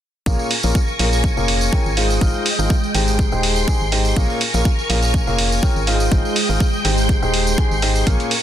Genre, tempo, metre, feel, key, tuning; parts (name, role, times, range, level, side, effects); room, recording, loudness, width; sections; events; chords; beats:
piano house; 123 BPM; 4/4; swing 54% on 16ths; Bb dorian; A4 = 440 Hz
string machine, violins; sustained chords; 0.3-8.4 s; Ab3 to Db6; -24 LUFS; right 1 dB; ensemble chorus, sidechain pumping
bright upright piano; riff; 0.3-8.3 s; Bb2 to Ab5; -22 LUFS; left 2 dB; sidechain pumping, low-pass filter, dub echo
organ-like FM bass; bass; 0.3-8.2 s; Eb1 to Bb1; -20 LUFS; equal; sidechain pumping
electronic kick drum; drums; 0.3-8.2 s; -18 LUFS; equal
tambourine; percussion; 0.3-8.3 s; -30 LUFS; right 3 dB
electronic hi-hat; drums; 0.5-8.4 s; -21 LUFS; right 2 dB
digital ambience; dense, heavily limited modern master; -15 LUFS; side -11 dB against mid
0.3-8.4 A section
0.3 Bbm7; 2.0 Fm7/Ab; 2.9 Abmaj7; 4.2 Bbm7; 5.9 Fm7/Ab; 6.8 Abmaj7
| 0.26 0.75 1.24 1.73 | 2.21 2.70 3.19 3.68 | 4.17 4.65 5.14 5.63 | 6.12 6.61 7.09 7.58 | 8.07